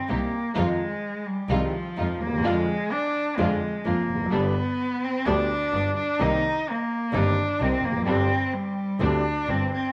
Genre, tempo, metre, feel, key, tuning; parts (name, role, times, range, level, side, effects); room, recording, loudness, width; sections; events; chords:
tango; 128 BPM; 4/4; rubato; C minor; A4 = 440 Hz
warm cello; second line; 0.0-9.9 s; F3 to Eb4; -28 LUFS; equal
warm baby grand piano; accompaniment; 0.1-9.7 s; G1 to G4; -30 LUFS; equal
rich studio string section; stabs; 0.1-9.7 s; G3 to G4; -35 LUFS; equal
warm double bass; bass; 0.1-9.7 s; F1 to F2; -31 LUFS; equal
moderate spring reverb, RT60 1.5 s, small room ambience; -25 LUFS; mono
0.0-9.9 A section
cello solo 0.0-9.9
0.0 Cm; 0.6 Fm7; 2.4 Ddim/F; 4.3 G; 6.2 Cm7; 8.1 Gsus4